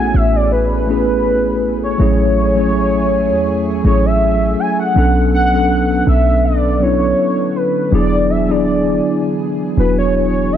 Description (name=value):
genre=R&B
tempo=81 BPM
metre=4/4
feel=swing 54% on 16ths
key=B dorian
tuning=A4 = 440 Hz
part: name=warm velvety synth lead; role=melody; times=0.0-10.6 s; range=B4 to G#5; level=-17 LUFS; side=equal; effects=chorus, tape echo
part: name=mellow tine electric piano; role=accompaniment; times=0.0-10.6 s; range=F#3 to A4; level=-16 LUFS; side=equal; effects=medium stereo tremolo
part: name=lush unison pad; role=sustained chords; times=0.0-10.6 s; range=D3 to G#4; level=-27 LUFS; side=equal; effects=chorus
part: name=clean 808-style bass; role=bass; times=0.0-10.6 s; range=D1 to E2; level=-17 LUFS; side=equal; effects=none
room=light reverb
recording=dry, gritty hardware recording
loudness=-12 LUFS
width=side -10 dB against mid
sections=0.0-10.6 A section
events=none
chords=0.0 Amaj9; 2.0 F#m7/A; 5.0 Bm9; 7.9 E7